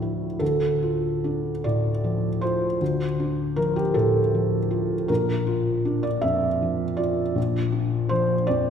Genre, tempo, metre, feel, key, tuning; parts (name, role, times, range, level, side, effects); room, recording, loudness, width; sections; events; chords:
neoclassical minimalist piano; 52 BPM (dotted quarters); 6/8; rubato; D minor; A4 = 440 Hz
felt-muted upright piano; solo; 0.0-8.7 s; Bb1 to E5; -21 LUFS; equal
wet scoring stage reverb, RT60 1.9 s; recorded in a church or concert hall; -21 LUFS; side -7 dB against mid
0.4-8.7 A section
0.4 Dm; 5.1 Bb